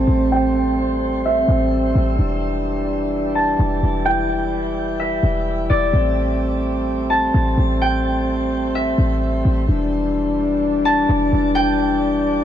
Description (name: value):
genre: hip hop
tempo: 128 BPM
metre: 4/4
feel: half-time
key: A minor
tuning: A4 = 440 Hz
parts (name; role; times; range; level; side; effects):
- concert harp; melody; 0.0-12.4 s; D5 to A5; -22 LUFS; equal; low-pass filter, ping-pong delay
- mellow French horn section; sustained chords; 0.0-12.4 s; E3 to E4; -20 LUFS; equal; low-pass filter
- clean 808-style bass; bass; 0.0-12.4 s; E1 to A1; -21 LUFS; equal; none
room: light reverb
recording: none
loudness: -16 LUFS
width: side -10 dB against mid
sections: 0.0-12.4 A section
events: filter sweep 0.0-12.4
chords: 0.0 Am7; 2.2 Em7; 5.9 Am7; 9.7 Em7